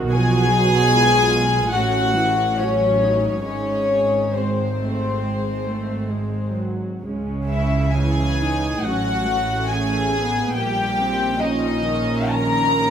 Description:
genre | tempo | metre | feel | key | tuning
classical, slow romantic movement for string orchestra | 62-74 BPM | 4/4 | rubato | unclear | A4 = 440 Hz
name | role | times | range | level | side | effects
dark studio viola section | accompaniment | 0.0-12.9 s | D#3 to F#4 | -25 LUFS | right 2 dB | none
rich symphonic double bass section | bass | 0.0-12.9 s | G#1 to C#2 | -25 LUFS | right 2 dB | none
warm symphonic cello section | bass | 0.0-12.9 s | G#2 to C#3 | -26 LUFS | right 2 dB | none
rich studio violin section | melody | 0.1-12.9 s | B#3 to A#4 | -27 LUFS | left 2 dB | none
warm symphonic violin section | second line | 0.1-12.9 s | B#4 to A#5 | -21 LUFS | left 3 dB | none
room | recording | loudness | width
moderate scoring stage reverb, RT60 1.6 s | close, detailed microphones | -18 LUFS | side -8 dB against mid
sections
0.0-12.9 A section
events
none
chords
0.1 Fdim/Cb; 1.7 F#m/A; 3.4 G#; 7.0 C#m; 8.8 F#m/A; 10.6 D#7/A#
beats
| 0.11 0.93 1.74 2.58 | 3.44 4.34 5.23 6.11 | 7.03 7.94 8.83 9.70 | 10.56 11.41 12.33

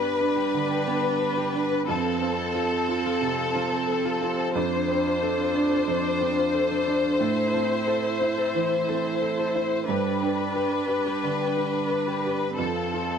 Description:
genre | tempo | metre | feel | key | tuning
neoclassical piano and strings | 89 BPM | 4/4 | rubato | unclear | A4 = 440 Hz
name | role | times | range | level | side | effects
rich studio violin section | melody | 0.0-13.2 s | A4 to C5 | -26 LUFS | left 5 dB | none
felt-muted upright piano | accompaniment | 0.0-13.2 s | F2 to B4 | -28 LUFS | right 9 dB | none
rich viola | accompaniment | 0.0-13.2 s | C4 to E4 | -31 LUFS | right 5 dB | none
concert harp | arpeggios | 0.0-13.2 s | D4 to A5 | -31 LUFS | left 4 dB | slapback echo
room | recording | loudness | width
studio reverb | dry, close 1970s-style studio recording | -22 LUFS | side -7 dB against mid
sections
0.0-13.2 A section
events
none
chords
0.0 G; 1.9 F; 4.5 Dm7/F; 7.2 Am; 9.9 G; 12.6 F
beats
0.53 1.20 | 1.88 2.55 3.21 3.88 | 4.55 5.21 5.87 6.54 | 7.20 7.86 8.54 9.21 | 9.88 10.55 11.23 11.90 | 12.58

